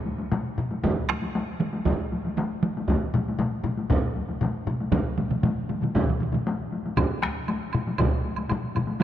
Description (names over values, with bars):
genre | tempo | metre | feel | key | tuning
japanese traditional, taiko drum ensemble | 117 BPM | 4/4 | straight | none | none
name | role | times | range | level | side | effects
taiko ensemble | percussion | 0.1-9.0 s | none | -29 LUFS | left 3 dB | none
taiko ensemble | percussion | 0.3-8.9 s | none | -29 LUFS | left 2 dB | none
taiko ensemble | percussion | 0.8-9.0 s | none | -30 LUFS | right 5 dB | none
taiko ensemble | percussion | 0.8-9.0 s | none | -29 LUFS | right 1 dB | none
woodblock | percussion | 7.0-8.9 s | none | -34 LUFS | right 6 dB | none
room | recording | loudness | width
wet cathedral reverb, RT60 5.3 s | in a vast, echoing space | -24 LUFS | side -11 dB against mid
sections
0.0-9.0 A section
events
none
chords
none